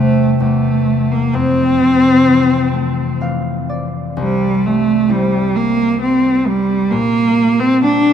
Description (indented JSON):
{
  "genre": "celtic folk, Celtic slow air",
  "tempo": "65 BPM",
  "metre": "3/4",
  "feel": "rubato",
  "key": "unclear",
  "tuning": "A4 = 439 Hz",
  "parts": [
    { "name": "rich cello", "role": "melody", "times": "0.0-8.1 s", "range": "G3 to D4", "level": "-13 LUFS", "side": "right 1 dB", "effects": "none" },
    { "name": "concert harp", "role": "accompaniment", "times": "0.0-8.1 s", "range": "C2 to F5", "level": "-18 LUFS", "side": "left 4 dB", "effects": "none" }
  ],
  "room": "moderate cathedral reverb, RT60 5.0 s",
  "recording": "minimal, uncompressed stereo recording",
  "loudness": "-12 LUFS",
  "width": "side -8 dB against mid",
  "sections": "0.0-4.2 A section; 4.2-8.1 B section",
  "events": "harp fill 2.7-4.2",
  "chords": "0.0 Am/E; 1.3 Fmaj7; 4.2 C; 6.9 Gm/Bb"
}